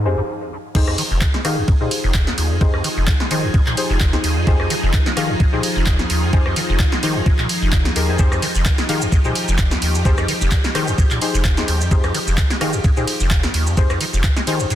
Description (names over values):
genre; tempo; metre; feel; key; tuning
acid house; 129 BPM; 4/4; swing 54% on 16ths; F minor; A4 = 443 Hz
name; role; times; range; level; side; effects
string machine, full ensemble; sustained chords; 0.0-14.8 s; F3 to Ab4; -26 LUFS; equal; ensemble chorus, sidechain pumping
deep acid bass; riff; 0.0-14.8 s; F1 to Ab3; -21 LUFS; equal; tube saturation, ensemble chorus, dub echo
deep mellow chord stab; stabs; 0.1-14.6 s; Eb4 to F5; -26 LUFS; left 4 dB; chorus, dub echo
electronic kick drum; drums; 0.8-14.3 s; none; -16 LUFS; equal; none
punchy analog drum machine; drums; 0.8-14.8 s; crash cymbal, handclaps, hi-hat, ride cymbal, rim click, snare drum; -23 LUFS; right 1 dB; none
maracas; percussion; 8.2-14.8 s; none; -30 LUFS; right 3 dB; none
room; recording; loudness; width
light reverb; dense, heavily limited modern master; -15 LUFS; side -12 dB against mid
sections
0.8-14.8 A section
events
stop 0.3-0.8; drop 0.8-14.8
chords
0.0 Fm7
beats
0.28 | 0.75 1.22 1.68 2.15 | 2.61 3.08 3.54 4.01 | 4.47 4.94 5.40 5.87 | 6.33 6.80 7.26 7.73 | 8.19 8.66 9.12 9.59 | 10.05 10.52 10.98 11.45 | 11.91 12.38 12.84 13.31 | 13.77 14.24 14.70